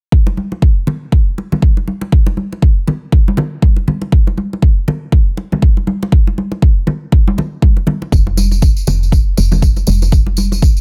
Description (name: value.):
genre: afro house.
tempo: 120 BPM.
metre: 4/4.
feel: swing 58% on 16ths.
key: unclear.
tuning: A4 = 439 Hz.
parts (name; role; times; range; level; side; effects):
electronic kick drum; drums; 0.1-10.7 s; none; -12 LUFS; equal; none.
congas; percussion; 0.3-10.6 s; none; -21 LUFS; equal; none.
woody FM bass; bass; 8.1-10.8 s; F1; -16 LUFS; equal; sidechain pumping.
tambourine; percussion; 8.1-10.8 s; none; -28 LUFS; equal; none.
room: small room reverb.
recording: none.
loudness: -13 LUFS.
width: mono.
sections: 0.1-10.8 A section.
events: none.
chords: none.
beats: | 0.12 0.62 1.12 1.62 | 2.12 2.62 3.12 3.62 | 4.12 4.62 5.12 5.62 | 6.12 6.62 7.12 7.62 | 8.12 8.62 9.12 9.62 | 10.12 10.62.